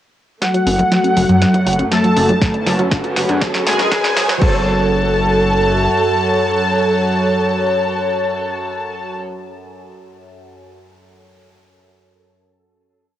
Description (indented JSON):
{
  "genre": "melodic techno",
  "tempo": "120 BPM",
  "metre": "4/4",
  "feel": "straight",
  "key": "F# minor",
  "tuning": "A4 = 442 Hz",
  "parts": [
    { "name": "resonant sweep polysynth", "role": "melody", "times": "0.4-9.2 s", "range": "F#3 to A4", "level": "-19 LUFS", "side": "equal", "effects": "chorus, sidechain pumping, cassette tape, tape echo" },
    { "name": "big bright polysynth", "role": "second line", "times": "0.4-9.2 s", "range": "F#5 to A5", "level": "-21 LUFS", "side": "left 1 dB", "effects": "chorus, sidechain pumping, cassette tape, tape echo" },
    { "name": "dark studio string section", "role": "sustained chords", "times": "0.4-9.2 s", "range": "D3 to C#5", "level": "-22 LUFS", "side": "right 1 dB", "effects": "sidechain pumping, cassette tape" },
    { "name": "analog pluck", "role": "arpeggios", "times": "0.4-4.6 s", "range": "F#3 to D4", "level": "-20 LUFS", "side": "right 1 dB", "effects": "chorus, sidechain pumping, cassette tape, tape echo" },
    { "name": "overtone-sweeping drone", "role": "drone", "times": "1.1-9.2 s", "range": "F#2", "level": "-29 LUFS", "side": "right 1 dB", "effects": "chorus, built-in reverb, phaser, sidechain pumping, cassette tape" },
    { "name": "house drum kit", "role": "drums", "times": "0.4-4.5 s", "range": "crash cymbal, hi-hat, snare drum, toms", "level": "-22 LUFS", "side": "equal", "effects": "high-pass filter on snare, cassette tape, high-pass filter on hats, high-pass filter on toms, high-pass filter on cymbals" },
    { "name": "riser", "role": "sound effects", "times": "2.3-4.4 s", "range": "none", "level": "-25 LUFS", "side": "equal", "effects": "none" },
    { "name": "deep dark ambient pad", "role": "texture", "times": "1.5-9.2 s", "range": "B3 to A5", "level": "-24 LUFS", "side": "equal", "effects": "chorus, built-in reverb, sidechain pumping, cassette tape" },
    { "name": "gritty driven synth bass", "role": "bass", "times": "0.7-5.9 s", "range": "F#1 to F#2", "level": "-20 LUFS", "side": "equal", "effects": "sidechain pumping" },
    { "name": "electronic kick drum", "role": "drums", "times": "2.4-4.5 s", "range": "none", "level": "-16 LUFS", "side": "equal", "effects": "cassette tape" }
  ],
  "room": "wet studio reverb, RT60 0.6 s",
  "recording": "home recording on cassette, high-pass filter",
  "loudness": "-13 LUFS",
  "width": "side -11 dB against mid",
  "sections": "0.4-4.4 build; 4.4-8.4 final chord",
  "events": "build-up 0.4-4.4; drum fill 0.4-4.4; filter sweep on synth arpeggio sound 0.4-4.4; filter sweep on analog polysynth 0.4-4.4; filter sweep 0.4-4.4; riser 2.3-4.4",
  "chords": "0.4 F#m; 2.4 Bmadd9/F#; 4.4 F#m"
}